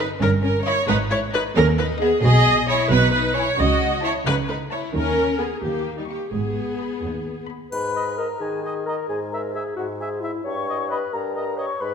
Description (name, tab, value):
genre	cinematic, playful, whimsical film cue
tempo	88 BPM (dotted quarters)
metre	6/8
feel	straight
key	G# minor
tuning	A4 = 440 Hz
part	rich chamber violin section	melody	0.0-7.7 s	D#5 to C#6	-36 LUFS	left 6 dB	none
part	rich chamber violin section	second line	0.0-7.5 s	G3 to G#4	-26 LUFS	left 5 dB	none
part	rich chamber viola section	accompaniment	0.0-7.5 s	D#4 to D#5	-22 LUFS	right 2 dB	none
part	clear studio double bass section	bass	0.0-7.6 s	G1 to D#2	-23 LUFS	right 2 dB	none
part	rich studio cello section	bass	0.0-7.6 s	D#2 to D#3	-26 LUFS	right 2 dB	none
part	flute section	second line	7.7-11.9 s	E5 to C#6	-30 LUFS	left 5 dB	none
part	mellow clarinet	second line	7.7-11.9 s	E4 to C#5	-28 LUFS	left 4 dB	none
part	clear bassoon	accompaniment	7.7-11.9 s	G2 to D#3	-30 LUFS	right 1 dB	none
part	triangle	percussion	7.7-8.6 s	none	-43 LUFS	left 1 dB	none
part	clear oboe	second line	8.0-11.7 s	D#5 to E5	-34 LUFS	equal	none
room	wet scoring stage reverb, RT60 1.6 s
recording	none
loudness	-19 LUFS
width	side -7 dB against mid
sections	0.0-7.7 A section; 7.7-11.9 B section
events	none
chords	0.0 D#/G; 0.9 G#5; 2.2 G#m/B; 3.6 A/C#; 4.9 G#5/D#; 5.6 D#7; 6.3 G#m; 9.1 F#9/G# (rootless); 10.5 D#7/G